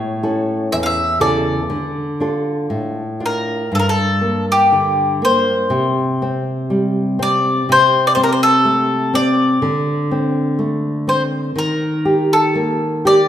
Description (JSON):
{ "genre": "fado-style ballad", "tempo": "61 BPM", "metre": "2/4", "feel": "rubato", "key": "D harmonic minor, G minor from 3.7 s", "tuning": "A4 = 440 Hz", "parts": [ { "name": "bowl-back mandolin", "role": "melody", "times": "0.0-13.3 s", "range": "G4 to F5", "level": "-16 LUFS", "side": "left 1 dB", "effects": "none" }, { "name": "nylon-string guitar", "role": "accompaniment", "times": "0.0-13.3 s", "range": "E2 to A4", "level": "-17 LUFS", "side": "equal", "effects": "none" } ], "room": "wet recital hall reverb, RT60 1.9 s", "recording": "minimal, uncompressed stereo recording", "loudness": "-14 LUFS", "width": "side -10 dB against mid", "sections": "0.0-3.7 A section; 3.7-13.3 B section", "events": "none", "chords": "0.0 A; 1.7 Dm; 3.7 Gm; 5.7 C5; 7.7 Bbmaj9/C (rootless); 9.6 D5; 11.6 Eb" }